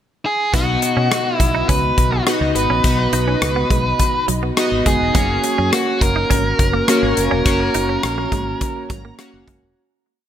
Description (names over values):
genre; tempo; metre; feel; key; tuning
1980s-style pop; 104 BPM; 4/4; straight; B major; A4 = 440 Hz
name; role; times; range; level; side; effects
high-gain lead guitar; melody; 0.3-9.1 s; F#4 to B4; -20 LUFS; equal; distortion, ping-pong delay
chorused retro synth keys; accompaniment; 0.5-9.8 s; B2 to A#5; -20 LUFS; left 1 dB; none
direct-recorded clean electric guitar; riff; 0.5-9.6 s; F#3 to D#4; -27 LUFS; right 7 dB; analog chorus, ping-pong delay
mellow fretless electric bass; bass; 0.5-9.7 s; E1 to B2; -22 LUFS; equal; none
modern studio drum kit; drums; 0.5-9.6 s; hi-hat, kick drum, rim click; -20 LUFS; left 1 dB; gated reverb
room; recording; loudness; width
light reverb, small room ambience; none; -15 LUFS; side -10 dB against mid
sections
0.0-0.5 pickup bar; 0.5-9.8 verse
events
fade-out 7.5-9.8; synth keys fill 8.6-9.8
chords
0.0 N.C.; 0.5 B; 5.2 F#